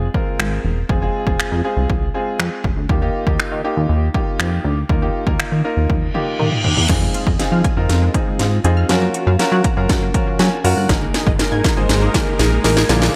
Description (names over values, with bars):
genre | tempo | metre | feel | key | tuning
dance-pop | 120 BPM | 4/4 | straight | F minor | A4 = 439 Hz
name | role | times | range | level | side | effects
clear concert grand piano | accompaniment | 0.0-13.2 s | Ab3 to Bb5 | -25 LUFS | equal | sidechain pumping
plucky analog bass | bass | 0.0-13.1 s | E1 to Gb3 | -20 LUFS | equal | sidechain pumping
house drum kit | drums | 0.1-13.1 s | crash cymbal, finger snaps, hi-hat, kick drum, snare drum, toms | -21 LUFS | equal | overdrive
reverse cymbal, riser and impact | sound effects | 6.1-13.2 s | none | -29 LUFS | equal | none
unison pluck | arpeggios | 6.9-13.1 s | D3 to Ab6 | -29 LUFS | equal | ensemble chorus, sidechain pumping, delay
supersaw pad | sustained chords | 11.3-13.2 s | Ab3 to Bb4 | -28 LUFS | equal | none
room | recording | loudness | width
light reverb, digital ambience | bright 1980s-style digital production | -17 LUFS | mono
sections
0.0-6.9 A section; 6.9-13.2 B section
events
drum fill 5.9-6.9, 6.9-13.2; reverse cymbal 6.2-6.9; build-up 6.9-13.2; impact 6.9-8.9; grand piano fill 9.9-10.9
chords
0.0 Fm; 2.9 Ebadd9; 6.9 Fm7; 8.9 Gbmaj7; 10.9 Absus2